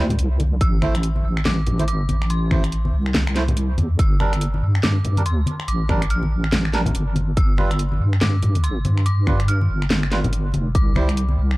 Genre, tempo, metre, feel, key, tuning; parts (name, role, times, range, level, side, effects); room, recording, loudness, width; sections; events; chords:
deep dubstep; 142 BPM; 4/4; swing 61% on 16ths, half-time; A4 = 440 Hz
melodica; stabs; 0.0-11.1 s; G3 to C5; -29 LUFS; right 3 dB; dub echo
deep soft wobble bass; bass; 0.0-11.6 s; F1 to G2; -20 LUFS; equal; chorus
garage drum kit; drums; 0.1-11.6 s; finger snaps, hi-hat, snare drum; -25 LUFS; equal
congas; percussion; 0.1-11.4 s; -27 LUFS; left 1 dB
dark detuned synth bell; melody; 0.6-11.6 s; C6 to F6; -32 LUFS; equal; chorus, dub echo
electronic kick drum; drums; 0.6-10.9 s; -19 LUFS; equal
digital ambience; dry, gritty hardware recording, vinyl crackle; -17 LUFS; side -20 dB against mid
0.0-11.6 A section
0.0 N.C.; 0.6 Am; 4.0 G5; 7.4 G7(no3); 10.8 C